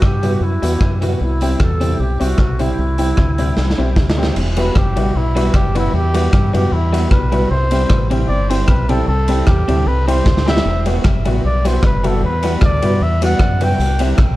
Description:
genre	ska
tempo	152 BPM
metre	4/4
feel	swing 54% on 8ths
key	E minor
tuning	A4 = 440 Hz
part	bright alto flute	melody	0.0-4.2 s	E4 to A4	-25 LUFS	right 1 dB	analog delay
part	deep dub fingered electric bass	bass	0.0-14.4 s	E1 to G2	-17 LUFS	equal	none
part	raw garage drum kit	drums	0.0-14.3 s	crash cymbal, hi-hat, kick drum, ride cymbal, rim click, snare drum	-18 LUFS	equal	none
part	electric guitar through a small old amp	accompaniment	0.2-14.2 s	G3 to G4	-24 LUFS	right 3 dB	tremolo, analog delay
part	honky-tonk upright piano	stabs	0.2-14.1 s	G3 to G4	-23 LUFS	left 4 dB	analog delay
part	breathy trumpet	melody	4.6-14.0 s	E4 to G5	-21 LUFS	equal	analog delay
room	light reverb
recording	dark, warm production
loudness	-13 LUFS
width	side -17 dB against mid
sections	0.0-4.4 A section; 4.4-14.4 B section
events	drum fill 3.6-4.4, 10.3-10.7; trumpet solo 4.4-14.4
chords	0.0 Emadd9; 1.2 C; 4.4 Emadd9; 7.5 C; 10.7 Emadd9; 13.8 C

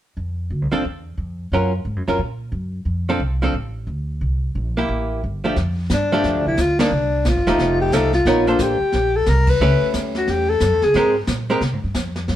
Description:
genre	jazz, small-group swing and bop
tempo	178 BPM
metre	4/4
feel	swing 63% on 8ths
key	F major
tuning	A4 = 440 Hz
part	upright bass	bass	0.2-12.4 s	Eb1 to C3	-22 LUFS	equal	none
part	archtop guitar, miked and amplified	accompaniment	0.7-11.6 s	Eb3 to Db5	-20 LUFS	right 1 dB	none
part	jazz brush drum kit	drums	5.6-12.4 s	brushed snare drum, hi-hat, kick drum, ride cymbal, snare drum	-27 LUFS	equal	none
part	warm alto saxophone	melody	5.9-11.2 s	D4 to B4	-18 LUFS	left 2 dB	none
room	moderate studio reverb, RT60 0.7 s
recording	band playing live in one room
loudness	-17 LUFS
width	side -12 dB against mid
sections	0.2-5.6 A section; 5.6-12.4 B section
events	band accent 6.7, 9.4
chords	0.2 F6; 1.5 Gbmaj7; 2.9 F6; 4.2 C7; 5.6 F69; 6.9 Cm9; 7.6 F9; 8.3 Bbmaj9; 9.6 A9; 10.9 Abmaj9

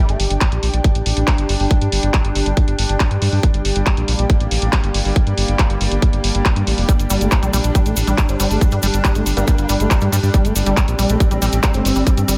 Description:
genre	psychedelic trance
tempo	139 BPM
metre	4/4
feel	straight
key	G minor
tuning	A4 = 443 Hz
part	evolving wavetable pad	sustained chords	0.8-12.4 s	G3 to D4	-27 LUFS	equal	chorus, built-in reverb, sidechain pumping
part	airy breathy pad	texture	0.0-12.4 s	D4 to G5	-28 LUFS	equal	chorus, sidechain pumping
part	round analog bass	bass	0.1-12.3 s	F1 to G2	-21 LUFS	equal	tube saturation
part	drum and bass drum kit	drums	0.1-12.4 s	handclaps, hi-hat	-25 LUFS	equal	small room ambience
part	electronic kick drum	drums	0.4-12.2 s	none	-17 LUFS	equal	small room ambience
part	overdriven acid bass	riff	6.9-12.4 s	G3 to A3	-26 LUFS	equal	cassette tape, sidechain pumping, analog delay
part	cabasa	percussion	6.9-12.4 s	none	-31 LUFS	equal	none
part	formant-sweep wobble bass	second line	8.3-11.9 s	Bb3 to C4	-33 LUFS	equal	analog chorus, sidechain pumping, high-pass filter, diffuse ambient delay
room	light reverb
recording	none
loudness	-17 LUFS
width	mono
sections	0.0-12.4 A section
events	none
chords	0.0 G5

